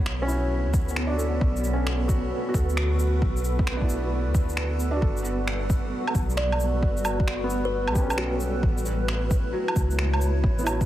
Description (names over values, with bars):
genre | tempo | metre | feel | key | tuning
future garage | 133 BPM | 4/4 | swing 65% on 16ths | B minor | A4 = 440 Hz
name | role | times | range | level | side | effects
felt-muted upright piano | accompaniment | 0.0-10.9 s | F#3 to A4 | -32 LUFS | right 1 dB | sidechain pumping, ping-pong delay
granular cloud pad | sustained chords | 0.0-10.9 s | G3 to C#5 | -31 LUFS | right 1 dB | built-in reverb, sidechain pumping
soft 808-style bass | bass | 0.0-10.9 s | G1 to D2 | -27 LUFS | equal | sidechain pumping
wind-like tuned noise texture | texture | 0.0-10.9 s | B3 to B4 | -37 LUFS | equal | built-in reverb
electronic finger snaps, shaker and woodblock | drums | 0.1-10.9 s | none | -33 LUFS | right 1 dB | overdrive
electronic kick drum | drums | 0.7-10.9 s | none | -24 LUFS | equal | overdrive
kalimba | melody | 6.4-8.7 s | F#4 to D5 | -32 LUFS | equal | ping-pong delay
room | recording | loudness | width
digital ambience | heavily compressed radio sound, multiband compression, vinyl crackle | -22 LUFS | side -13 dB against mid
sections
0.0-10.9 A section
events
none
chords
0.0 Bm7; 5.0 Gmaj7; 8.6 A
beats
0.06 0.51 0.96 | 1.41 1.86 2.32 2.77 | 3.22 3.67 4.12 4.57 | 5.02 5.47 5.93 6.38 | 6.83 7.28 7.73 8.18 | 8.63 9.08 9.54 9.99 | 10.44